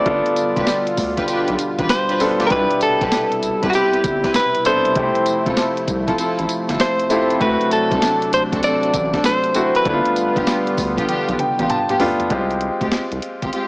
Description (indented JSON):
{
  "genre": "R&B, new jack swing",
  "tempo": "98 BPM",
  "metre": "4/4",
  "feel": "swing 66% on 16ths",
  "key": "unclear",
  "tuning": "A4 = 438 Hz",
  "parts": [
    { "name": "direct-recorded clean electric guitar", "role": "melody", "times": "0.0-11.7 s", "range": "F#4 to D5", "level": "-19 LUFS", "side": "equal", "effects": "none" },
    { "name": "clear concert grand piano", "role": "accompaniment", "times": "0.0-13.7 s", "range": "Ab3 to A5", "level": "-22 LUFS", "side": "left 1 dB", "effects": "none" },
    { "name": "warm analog pad", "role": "sustained chords", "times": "0.0-12.3 s", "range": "B2 to F4", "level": "-24 LUFS", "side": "equal", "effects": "chorus" },
    { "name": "round analog bass", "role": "bass", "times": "0.1-13.5 s", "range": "E1 to D2", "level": "-25 LUFS", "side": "equal", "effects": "none" },
    { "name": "clean 12-bit digital drum machine", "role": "drums", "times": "0.1-13.7 s", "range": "hi-hat, kick drum, snare drum, tambourine, toms", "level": "-24 LUFS", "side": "equal", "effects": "none" },
    { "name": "warm studio string section", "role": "stabs", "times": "0.6-13.7 s", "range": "Ab3 to B4", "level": "-24 LUFS", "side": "equal", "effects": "digital delay" }
  ],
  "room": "light reverb",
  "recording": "small speaker sound",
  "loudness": "-16 LUFS",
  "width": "side -26 dB against mid",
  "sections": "0.0-12.3 A section; 12.3-13.7 B section",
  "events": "drum fill 11.1-12.3; grand piano fill 11.1-12.3",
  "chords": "0.1 G7; 2.5 Cmaj7; 5.0 Fmaj7; 7.4 D7; 9.9 G7; 12.3 Fmadd9"
}